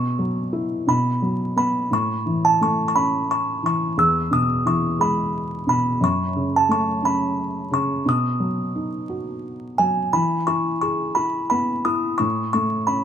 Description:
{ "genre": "children's music, lullaby", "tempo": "58 BPM (dotted quarters)", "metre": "6/8", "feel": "straight", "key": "E major", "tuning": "A4 = 439 Hz", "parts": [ { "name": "music box", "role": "melody", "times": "0.0-13.0 s", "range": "G#5 to E6", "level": "-21 LUFS", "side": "right 1 dB", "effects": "none" }, { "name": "felt-muted upright piano", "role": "accompaniment", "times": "0.0-13.0 s", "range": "E2 to G#4", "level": "-23 LUFS", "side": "equal", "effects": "none" } ], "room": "moderate plate reverb, RT60 2.6 s", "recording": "minimal, uncompressed stereo recording, vinyl crackle", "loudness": "-19 LUFS", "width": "side -9 dB against mid", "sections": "0.0-10.1 A section; 10.1-13.0 B section", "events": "none", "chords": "0.0 Bsus4; 0.9 B5; 1.9 A; 4.0 E; 6.0 F#m; 8.1 B; 10.1 E; 12.2 A" }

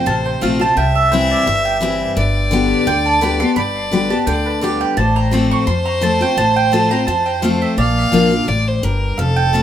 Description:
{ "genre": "bluegrass", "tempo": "171 BPM", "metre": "4/4", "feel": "swing 54% on 8ths", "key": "F major", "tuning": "A4 = 440 Hz", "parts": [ { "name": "clear fiddle", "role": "second line", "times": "0.0-9.6 s", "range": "A4 to F5", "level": "-20 LUFS", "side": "left 2 dB", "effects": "none" }, { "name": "picked steel-string acoustic guitar", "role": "accompaniment", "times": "0.0-9.6 s", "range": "F2 to G4", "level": "-18 LUFS", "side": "left 2 dB", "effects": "none" }, { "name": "mandolin", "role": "stabs", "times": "0.0-9.6 s", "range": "B4 to Db6", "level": "-19 LUFS", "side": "right 5 dB", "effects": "tape echo" }, { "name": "upright bass", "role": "bass", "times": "0.1-9.6 s", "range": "F1 to F2", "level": "-21 LUFS", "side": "equal", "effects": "none" } ], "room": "moderate studio reverb, RT60 0.5 s", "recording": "none", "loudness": "-13 LUFS", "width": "side -10 dB against mid", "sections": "0.0-9.6 A section", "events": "mandolin solo 0.0-9.6", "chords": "0.0 F; 0.8 C; 2.2 G; 5.0 F/A; 7.8 Bb" }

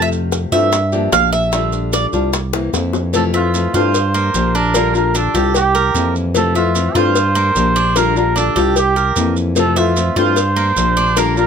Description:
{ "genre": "latin, Cuban son and guajira", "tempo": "149 BPM", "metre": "4/4", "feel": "straight", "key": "F major", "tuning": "A4 = 440 Hz", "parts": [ { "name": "nylon-string guitar", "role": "accompaniment", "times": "0.0-11.5 s", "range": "C3 to G4", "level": "-19 LUFS", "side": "left 6 dB", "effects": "none" }, { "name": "Cuban tres", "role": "arpeggios", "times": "0.0-11.5 s", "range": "Bb3 to F5", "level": "-19 LUFS", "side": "right 4 dB", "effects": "none" }, { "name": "growling FM bass", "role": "bass", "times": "0.0-11.5 s", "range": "Bb1 to G2", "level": "-18 LUFS", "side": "equal", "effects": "none" }, { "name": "maracas", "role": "percussion", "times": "0.1-11.5 s", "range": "none", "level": "-26 LUFS", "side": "right 7 dB", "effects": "none" }, { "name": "bongos and cowbell", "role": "percussion", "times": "0.3-11.4 s", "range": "none", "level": "-22 LUFS", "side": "left 7 dB", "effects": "none" }, { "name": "trumpet with cup mute", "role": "melody", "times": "3.1-11.5 s", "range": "F4 to C5", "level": "-18 LUFS", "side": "right 3 dB", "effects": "none" } ], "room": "light reverb", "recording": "close, detailed microphones", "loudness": "-13 LUFS", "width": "side -7 dB against mid", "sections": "0.0-3.1 A section; 3.1-11.5 B section", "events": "Cuban tres solo 0.0-3.1; drum fill 2.5-3.1", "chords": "0.0 Fmaj7; 0.7 Gm7; 1.5 Bb6; 2.3 C7; 3.1 Fmaj7; 3.9 Gm7; 4.7 Bb6; 5.5 C7; 6.4 Fmaj7; 7.2 Gm7; 8.0 Bb6; 8.8 C7; 9.6 Fmaj7; 10.4 Gm7" }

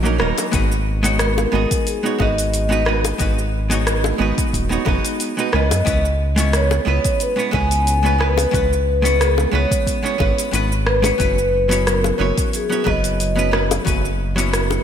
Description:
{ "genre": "sunset chillout", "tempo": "90 BPM", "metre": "4/4", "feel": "swing 54% on 16ths", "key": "G# minor", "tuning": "A4 = 441 Hz", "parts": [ { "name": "vintage hollow-body jazz guitar", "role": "accompaniment", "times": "0.0-14.8 s", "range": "F#3 to C#5", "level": "-21 LUFS", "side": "moving between left 2 dB and right 5 dB", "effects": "auto-pan, digital delay" }, { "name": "round analog bass", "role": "bass", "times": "0.0-14.8 s", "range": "D#1 to F#2", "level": "-20 LUFS", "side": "equal", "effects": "none" }, { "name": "deep house drum kit", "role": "drums", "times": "0.1-14.8 s", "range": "hi-hat, rim click, shaker", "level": "-24 LUFS", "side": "right 1 dB", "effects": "overdrive, gated reverb" }, { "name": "bongos", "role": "percussion", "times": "0.4-14.8 s", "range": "none", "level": "-28 LUFS", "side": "left 6 dB", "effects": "none" }, { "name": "electronic kick drum", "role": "drums", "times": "0.5-14.0 s", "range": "none", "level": "-22 LUFS", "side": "equal", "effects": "overdrive" }, { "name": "vibraphone with soft mallets", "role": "melody", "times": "1.2-13.5 s", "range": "G#4 to G#5", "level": "-22 LUFS", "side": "left 1 dB", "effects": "ping-pong delay" } ], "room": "moderate lush hall reverb, RT60 1.7 s", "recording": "bright 1980s-style digital production", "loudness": "-16 LUFS", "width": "side -8 dB against mid", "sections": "0.0-14.8 A section", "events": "break 0.0-0.5", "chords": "0.0 D#m7; 0.5 G#m7; 5.5 C#m7; 11.2 F#7sus4" }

